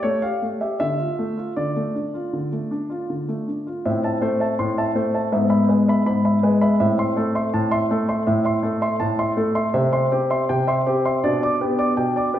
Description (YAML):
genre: classical-period piano sonatina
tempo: 80 BPM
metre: 4/4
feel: uneven beats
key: D minor, A minor from 3.8 s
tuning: A4 = 440 Hz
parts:
  - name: warm grand piano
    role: solo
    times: 0.0-12.4 s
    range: G#2 to D6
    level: -19 LUFS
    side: equal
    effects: none
room: wet recital hall reverb, RT60 1.4 s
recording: heard from further back in the room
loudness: -19 LUFS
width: side -11 dB against mid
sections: 0.0-3.8 A section; 3.8-12.4 B section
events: none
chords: 0.0 A7b13; 0.8 Dm; 3.8 Am; 5.3 E/G#; 6.8 Am; 9.7 C; 11.2 G/B